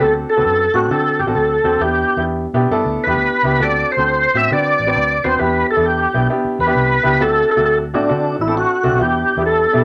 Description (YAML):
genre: uptempo 1960s-style soul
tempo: 134 BPM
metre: 4/4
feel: swing 64% on 8ths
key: unclear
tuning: A4 = 437 Hz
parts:
  - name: tonewheel organ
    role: melody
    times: 0.0-9.8 s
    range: D4 to E5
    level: -18 LUFS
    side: equal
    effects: overdrive, chorus vibrato, slow rotary speaker
  - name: clear baby grand piano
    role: accompaniment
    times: 0.0-9.8 s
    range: G3 to C5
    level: -22 LUFS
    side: equal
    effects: none
  - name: vintage muted fingered electric bass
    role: bass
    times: 0.0-9.8 s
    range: A1 to D3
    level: -25 LUFS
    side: equal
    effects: none
room: wet studio reverb, RT60 0.5 s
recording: none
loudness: -16 LUFS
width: mono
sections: 0.0-9.8 A section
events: none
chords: 0.0 D7; 1.8 Em7; 3.6 D7; 5.4 Em7; 7.2 D7; 9.0 Em7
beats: | 0.01 0.46 0.91 1.36 | 1.81 2.26 2.71 3.16 | 3.61 4.06 4.50 4.95 | 5.40 5.85 6.30 6.75 | 7.20 7.65 8.10 8.55 | 8.99 9.44